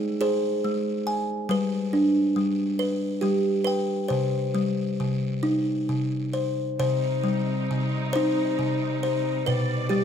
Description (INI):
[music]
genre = children's music, lullaby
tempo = 46 BPM (dotted quarters)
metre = 6/8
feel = rubato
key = C harmonic minor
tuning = A4 = 443 Hz
[part]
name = buzzing kalimba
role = melody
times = 0.0-10.0 s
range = B2 to Ab5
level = -23 LUFS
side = equal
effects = none
[part]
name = clear symphonic string section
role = sustained chords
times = 6.8-10.0 s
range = B2 to D5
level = -32 LUFS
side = right 5 dB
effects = none
[sound]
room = moderate recital hall reverb, RT60 1.5 s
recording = none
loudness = -23 LUFS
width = side -8 dB against mid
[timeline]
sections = 0.0-6.8 A section; 6.8-10.0 A section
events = none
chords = 0.0 Ab; 1.5 G; 4.1 Cm; 9.5 G/B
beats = 0.21 | 1.50 2.79 | 4.10 5.44 | 6.79 8.14 | 9.46